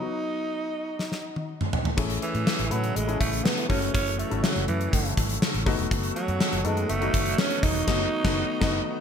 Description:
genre	1980s-style pop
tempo	122 BPM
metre	4/4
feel	straight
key	unclear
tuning	A4 = 443 Hz
part	raspy alto saxophone	melody	0.0-9.0 s	E3 to D#4	-30 LUFS	right 4 dB	ping-pong delay
part	warm baby grand piano	accompaniment	0.0-9.0 s	F#3 to B4	-32 LUFS	left 6 dB	none
part	gated 80s drum kit	drums	1.0-8.8 s	crash cymbal, hi-hat, kick drum, snare drum, toms	-26 LUFS	left 1 dB	gated reverb
part	phased analog pad	sustained chords	2.3-9.0 s	C#3 to G#4	-35 LUFS	right 1 dB	phaser, chorus
part	vintage muted fingered electric bass	bass	2.0-8.8 s	E1 to A2	-30 LUFS	equal	none
room	light reverb, studio ambience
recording	bright 1980s-style digital production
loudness	-23 LUFS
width	side -7 dB against mid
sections	0.0-2.0 A section; 2.0-9.0 B section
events	drum fill 1.0-2.0; band accent 7.9-9.0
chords	0.0 B; 2.0 Amaj7; 3.7 F#m7; 5.7 B7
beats	| 0.01 0.50 0.99 1.49 | 1.98 2.47 2.96 3.45 | 3.94 4.44 4.93 5.42 | 5.91 6.40 6.89 7.39 | 7.88 8.37 8.86

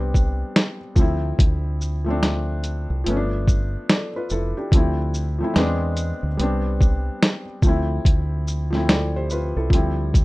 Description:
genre	lo-fi hip hop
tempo	72 BPM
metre	4/4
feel	swing 61% on 16ths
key	D dorian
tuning	A4 = 440 Hz
part	felt-muted upright piano	accompaniment	0.0-10.2 s	F3 to D5	-25 LUFS	left 1 dB	cassette tape
part	deep dub fingered electric bass	bass	0.0-10.2 s	F1 to E2	-23 LUFS	equal	none
part	lo-fi sampler-style drum kit	drums	0.1-10.2 s	hi-hat, kick drum, shaker, snare drum	-18 LUFS	equal	none
room	light reverb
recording	rough home demo mix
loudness	-19 LUFS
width	side -20 dB against mid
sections	0.0-10.2 A section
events	none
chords	0.0 Gadd11/C; 1.0 Dm9; 3.1 G9; 4.7 Dm9; 5.6 E7b13; 6.4 Gadd11/C; 7.6 Dm9; 9.7 Dm11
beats	0.55 | 1.39 2.22 3.05 3.88 | 4.72 5.55 6.38 7.22 | 8.05 8.88 9.72

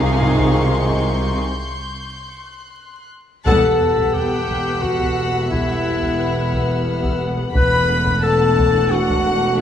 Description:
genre	cinematic, suspense film score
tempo	88 BPM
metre	3/4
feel	straight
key	C minor, E minor from 3.5 s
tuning	A4 = 440 Hz
part	dark studio violin section	melody	0.0-9.6 s	F5 to F#5	-29 LUFS	left 4 dB	none
part	warm symphonic violin section	second line	0.0-9.6 s	Ab4 to B5	-25 LUFS	equal	none
part	dark symphonic viola section	accompaniment	0.0-9.6 s	G3 to Eb4	-26 LUFS	right 1 dB	none
part	mellow French horn section	sustained chords	0.0-9.6 s	C4 to B4	-24 LUFS	left 4 dB	none
part	warm trombone section	sustained chords	0.0-1.4 s	Eb3 to Ab3	-28 LUFS	right 3 dB	none
part	clear chamber double bass section	bass	0.0-9.6 s	E1 to C2	-23 LUFS	right 1 dB	none
part	rich chamber cello section	bass	0.0-9.6 s	E2 to C3	-26 LUFS	right 1 dB	none
part	vibraphone with medium mallets	texture	0.0-9.6 s	A4 to B5	-29 LUFS	left 4 dB	none
part	warm symphonic violin section	texture	0.0-7.2 s	C6 to B6	-31 LUFS	left 3 dB	none
part	taiko ensemble	drums	0.2-9.6 s	none	-25 LUFS	equal	none
part	warm clarinet	second line	3.5-9.6 s	E4 to B4	-21 LUFS	left 1 dB	none
room	wet scoring stage reverb, RT60 1.5 s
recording	vinyl crackle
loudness	-15 LUFS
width	side -9 dB against mid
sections	0.0-3.5 A section; 3.5-9.6 B section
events	break 1.4-3.5; drum fill 2.9-3.5; band accent 3.5-4.1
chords	0.0 Fm7/C; 1.4 C5; 3.5 Emadd9; 7.6 Dadd9/E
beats	0.05 0.73 | 1.42 2.10 2.78 | 3.46 4.14 4.82 | 5.51 6.19 6.87 | 7.55 8.23 8.91 | 9.60

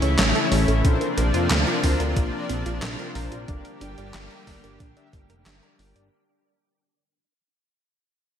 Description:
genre	synthwave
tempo	91 BPM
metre	4/4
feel	straight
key	unclear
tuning	A4 = 438 Hz
part	lush unison pad	sustained chords	0.0-6.1 s	C3 to G4	-28 LUFS	equal	chorus, sidechain pumping
part	wide unison pluck	arpeggios	0.0-6.0 s	C4 to D5	-32 LUFS	right 3 dB	vintage 12-bit sampler grit, digital delay
part	chorused synth bass	bass	0.0-6.1 s	F1 to F2	-24 LUFS	equal	sidechain pumping
part	gated 80s digital drum machine	drums	0.0-6.1 s	handclaps, hi-hat, snare drum	-26 LUFS	equal	gated reverb, gated reverb snare
part	mellow synth brass	stabs	0.4-6.1 s	C#4 to E5	-30 LUFS	left 4 dB	chorus, digital delay
part	electronic kick drum	drums	0.8-5.3 s	none	-23 LUFS	equal	none
room	moderate lush hall reverb, RT60 2.4 s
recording	bright 1980s-style digital production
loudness	-20 LUFS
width	side -9 dB against mid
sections	0.0-6.1 A section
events	fade-out 0.0-6.1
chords	0.0 A; 0.8 Bbadd9; 3.5 Gm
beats	0.19 | 0.85 1.51 2.17 2.83 | 3.48 4.14 4.80 5.46

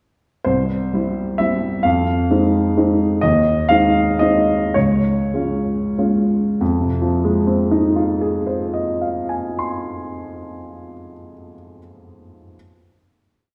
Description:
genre	neoclassical minimalist piano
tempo	93-132 BPM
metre	3/4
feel	rubato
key	F minor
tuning	A4 = 439 Hz
part	warm baby grand piano	solo	0.4-12.6 s	C2 to C6	-19 LUFS	equal	none
room	wet recital hall reverb, RT60 1.6 s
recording	heard from further back in the room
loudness	-18 LUFS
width	mono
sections	0.5-6.6 A section; 6.6-10.3 final chord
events	slowing down 2.5-6.6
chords	0.5 C; 1.8 Fm7; 3.2 Ab/Eb; 4.8 Db; 6.6 Fm7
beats	| 0.46 0.93 1.39 | 1.84 2.30 2.77 | 3.23 3.70 4.21 | 4.75 5.34 5.96 | 6.60 7.22 7.84 | 8.46 9.09 9.70

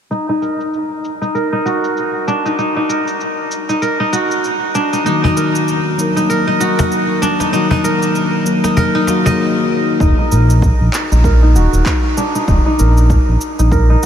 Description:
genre	organic downtempo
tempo	97 BPM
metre	4/4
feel	swing 58% on 16ths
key	Eb harmonic minor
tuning	A4 = 440 Hz
part	kora	arpeggios	0.1-14.1 s	D4 to Eb5	-16 LUFS	equal	low-pass filter, diffuse ambient delay
part	electronic cabasa and handclaps	drums	0.1-14.1 s	none	-27 LUFS	right 1 dB	overdrive, low-pass filter on perc, small room ambience, low-pass filter on snare
part	mellow tine electric piano	accompaniment	5.0-10.0 s	Eb3 to Bb4	-18 LUFS	left 3 dB	lush chorus, sidechain pumping, diffuse ambient delay
part	cajon	percussion	5.2-9.4 s	none	-22 LUFS	left 1 dB	none
part	smooth gliding synth bass	bass	10.0-14.0 s	Eb1 to Bb1	-11 LUFS	equal	sidechain pumping
part	electronic kick drum	drums	10.0-13.9 s	none	-16 LUFS	equal	overdrive, small room ambience
room	moderate huge ambient reverb, RT60 7.2 s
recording	dreamy mix soaked in reverb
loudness	-12 LUFS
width	side -9 dB against mid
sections	0.1-10.0 A section; 10.0-14.1 B section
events	filter sweep on kora 0.1-10.0, 10.0-14.1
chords	0.1 Ebm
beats	| 0.11 0.73 1.35 1.97 | 2.58 3.20 3.82 4.44 | 5.06 5.68 6.30 6.92 | 7.53 8.15 8.77 9.39 | 10.01 10.63 11.24 11.86 | 12.48 13.10 13.72

